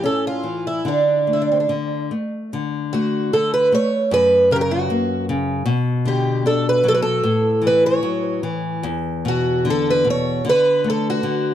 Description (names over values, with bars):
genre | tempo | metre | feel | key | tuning
fado-style ballad | 75 BPM | 2/4 | rubato | D major | A4 = 441 Hz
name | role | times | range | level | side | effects
picked twelve-string acoustic guitar | melody | 0.0-11.5 s | C4 to C#5 | -18 LUFS | right 2 dB | tape echo
nylon-string guitar | accompaniment | 0.0-11.5 s | E2 to D4 | -21 LUFS | left 3 dB | none
room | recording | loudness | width
light reverb | dry, close 1970s-style studio recording | -17 LUFS | side -10 dB against mid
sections
0.0-2.5 A section; 2.5-11.5 B section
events
none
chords
0.0 A; 0.9 D5; 4.1 F#; 5.7 Bm; 7.2 A5; 8.8 E5; 10.5 D5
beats
0.04 | 0.85 1.69 | 2.51 3.32 | 4.11 4.89 | 5.67 6.45 | 7.24 8.03 | 8.85 9.65 | 10.45 11.24